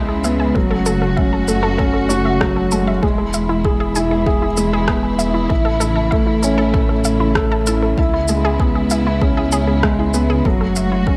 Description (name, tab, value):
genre	piano and strings electronica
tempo	97 BPM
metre	4/4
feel	straight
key	A major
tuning	A4 = 440 Hz
part	dark studio string section	sustained chords	0.0-11.2 s	B2 to F#4	-24 LUFS	equal	sidechain pumping
part	unison pluck	arpeggios	0.0-11.2 s	E4 to A5	-27 LUFS	equal	cassette tape, sidechain pumping, delay
part	felt-muted upright piano	riff	0.0-11.2 s	F#3 to A4	-21 LUFS	equal	delay
part	dark detuned saw bass	bass	0.0-11.2 s	E1 to C#2	-24 LUFS	equal	sidechain pumping
part	electronic shaker and rim click	drums	0.2-10.9 s	none	-26 LUFS	equal	none
part	electronic kick drum	drums	0.6-11.2 s	none	-22 LUFS	equal	none
room	light reverb, digital ambience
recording	none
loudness	-17 LUFS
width	mono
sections	0.0-11.2 A section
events	none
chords	0.0 C#m7; 0.6 F#madd9; 3.0 E; 5.5 A; 8.0 C#m7; 10.4 F#madd9